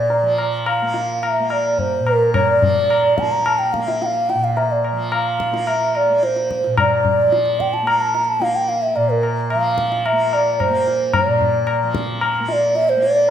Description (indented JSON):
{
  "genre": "indian classical, Hindustani",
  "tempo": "109 BPM",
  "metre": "4/4",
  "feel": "straight",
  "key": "Bb raga yaman",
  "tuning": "A4 = 440 Hz",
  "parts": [
    { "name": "mellow hollow bass bansuri", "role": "melody", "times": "0.0-13.3 s", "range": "Bb4 to Bb5", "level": "-17 LUFS", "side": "right 1 dB", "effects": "none" },
    { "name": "tanpura", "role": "drone", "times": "0.0-13.3 s", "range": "Bb2 to Bb3", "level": "-25 LUFS", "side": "right 1 dB", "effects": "none" },
    { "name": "tabla", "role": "percussion", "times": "0.1-13.2 s", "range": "none", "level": "-22 LUFS", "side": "left 4 dB", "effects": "none" }
  ],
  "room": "wet recital hall reverb, RT60 1.5 s",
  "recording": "none",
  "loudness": "-16 LUFS",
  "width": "side -9 dB against mid",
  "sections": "0.0-13.3 A section",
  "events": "speeding up 0.0-13.3",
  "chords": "none"
}